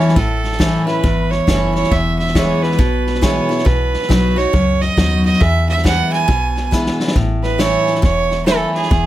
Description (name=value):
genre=honky-tonk and classic country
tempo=137 BPM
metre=4/4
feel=swing 63% on 8ths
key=A major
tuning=A4 = 440 Hz
part: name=clear fiddle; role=second line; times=0.0-9.1 s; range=G#4 to G#5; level=-19 LUFS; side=right 5 dB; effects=none
part: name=picked steel-string acoustic guitar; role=accompaniment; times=0.0-9.1 s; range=E2 to F#4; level=-18 LUFS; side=left 2 dB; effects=none
part: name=vintage drum kit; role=drums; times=0.0-9.0 s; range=hi-hat, kick drum, snare drum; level=-18 LUFS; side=equal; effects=none
part: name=woody FM bass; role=bass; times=0.2-9.1 s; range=E1 to E2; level=-20 LUFS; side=equal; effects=none
room=little or no reverb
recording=none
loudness=-13 LUFS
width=side -14 dB against mid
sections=0.2-7.2 A section; 7.2-9.1 B section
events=fiddle solo 0.2-7.2, 7.2-9.1; drum fill 6.7-7.2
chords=0.2 A; 1.9 E; 3.7 B; 5.4 E; 7.2 A